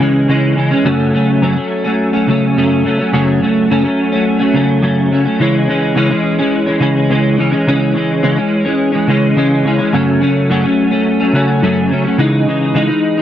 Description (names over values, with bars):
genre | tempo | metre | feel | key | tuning
indie pop | 106 BPM | 4/4 | straight | C# minor | A4 = 440 Hz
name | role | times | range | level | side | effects
clean electric guitar | solo | 0.0-13.2 s | F#2 to D#4 | -11 LUFS | equal | ensemble chorus, vibrato effect
room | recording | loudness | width
light reverb | cassette tape | -11 LUFS | side -11 dB against mid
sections
0.0-13.2 A section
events
none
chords
0.0 C#m; 0.9 F#m; 5.4 C#m; 9.9 F#m; 12.2 C#madd9